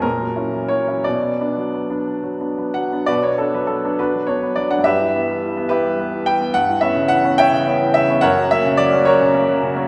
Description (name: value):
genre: classical, romantic character piece for solo piano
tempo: 57-73 BPM (dotted quarters)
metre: 6/8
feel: rubato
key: B minor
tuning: A4 = 440 Hz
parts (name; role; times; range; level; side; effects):
- clear grand piano; solo; 0.0-9.9 s; F#2 to G5; -18 LUFS; equal; none
room: wet concert hall reverb, RT60 2.1 s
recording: recorded in a church or concert hall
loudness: -18 LUFS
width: mono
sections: 0.0-3.1 A section; 3.1-9.9 A section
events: none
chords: 0.0 F#7/A#; 1.1 Bm; 4.8 Em/G; 6.5 C#m7b5/G; 8.2 F#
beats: 0.04 | 1.05 2.07 | 3.08 3.98 | 4.85 5.70 | 6.55 7.38 | 8.22 9.06